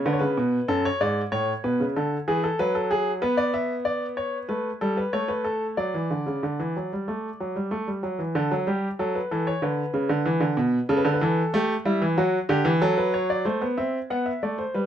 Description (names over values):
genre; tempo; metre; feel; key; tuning
classical, baroque-style two-part invention for grand piano; 94 BPM; 4/4; straight; D major; A4 = 440 Hz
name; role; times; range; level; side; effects
clear baby grand piano; solo; 0.0-14.9 s; F#2 to F#5; -22 LUFS; equal; none
room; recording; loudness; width
light reverb; none; -22 LUFS; side -10 dB against mid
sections
0.0-8.4 A section; 8.4-13.5 B section; 13.5-14.9 A section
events
none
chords
0.0 Bmadd9; 0.7 F#m; 2.0 Bm7/D; 3.2 Bmadd9; 4.5 Gadd9; 5.1 A; 5.8 D; 8.4 D (rootless); 9.6 E5; 10.9 A7(no3); 12.2 D; 13.5 D7(no3)/A (rootless)